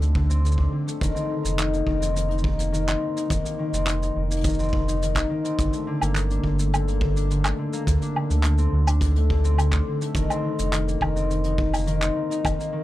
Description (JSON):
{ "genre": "folktronica", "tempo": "105 BPM", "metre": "4/4", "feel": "straight", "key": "F mixolydian", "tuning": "A4 = 440 Hz", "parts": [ { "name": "concert harp", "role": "arpeggios", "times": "0.0-12.8 s", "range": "D3 to Eb4", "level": "-25 LUFS", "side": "left 2 dB", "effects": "tape echo" }, { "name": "warm sub bass", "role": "bass", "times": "0.0-12.6 s", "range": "F1 to D2", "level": "-23 LUFS", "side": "equal", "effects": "none" }, { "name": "soft brush drum kit", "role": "drums", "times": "0.0-12.7 s", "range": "handclaps, hi-hat, shaker, woodblock", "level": "-29 LUFS", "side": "equal", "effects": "none" }, { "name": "kick drum", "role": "drums", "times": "0.2-12.6 s", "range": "none", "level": "-30 LUFS", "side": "equal", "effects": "none" } ], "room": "little or no reverb", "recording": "none", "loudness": "-21 LUFS", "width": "side -15 dB against mid", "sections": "0.0-12.8 A section", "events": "none", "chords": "0.0 D5; 1.0 F7sus4; 5.6 Gmadd9; 7.9 D5; 10.2 F7sus4", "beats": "0.45 | 1.02 1.59 2.16 2.73 | 3.30 3.88 4.45 5.02 | 5.59 6.16 6.73 7.30 | 7.88 8.45 9.02 9.59 | 10.16 10.73 11.30 11.88 | 12.45" }